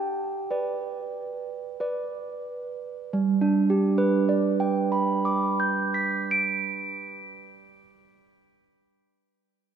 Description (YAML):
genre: classical, tune for handbells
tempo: 43-49 BPM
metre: 3/4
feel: straight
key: G major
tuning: A4 = 440 Hz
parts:
  - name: handbells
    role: solo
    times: 0.0-8.8 s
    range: G3 to D7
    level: -24 LUFS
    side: right 3 dB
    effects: none
room: wet church reverb, RT60 3.4 s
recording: none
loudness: -23 LUFS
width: side -8 dB against mid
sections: 0.0-3.1 A section; 3.1-7.3 B section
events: slowing down 0.0-3.1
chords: 0.0 G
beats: 0.51 1.79 | 3.15 4.52 5.91